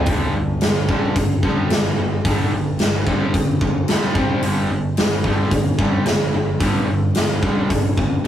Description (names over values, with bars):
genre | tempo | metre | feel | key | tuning
hard rock | 110 BPM | 4/4 | straight | unclear | A4 = 442 Hz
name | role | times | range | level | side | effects
overdriven semi-hollow guitar | riff | 0.0-8.3 s | G2 to C4 | -23 LUFS | equal | none
tight distorted guitar | riff | 0.0-8.3 s | G2 to C4 | -26 LUFS | right 2 dB | distortion
picked electric bass | bass | 0.0-8.3 s | G1 to C2 | -28 LUFS | equal | none
big rock drum kit | drums | 0.1-8.3 s | hi-hat, kick drum, snare drum | -19 LUFS | equal | none
room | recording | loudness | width
moderate booth ambience, RT60 0.2 s | rough rehearsal-room recording, warm saturation | -16 LUFS | side -10 dB against mid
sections
0.1-8.3 A section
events
none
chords
0.1 G5; 4.2 C5; 4.4 G5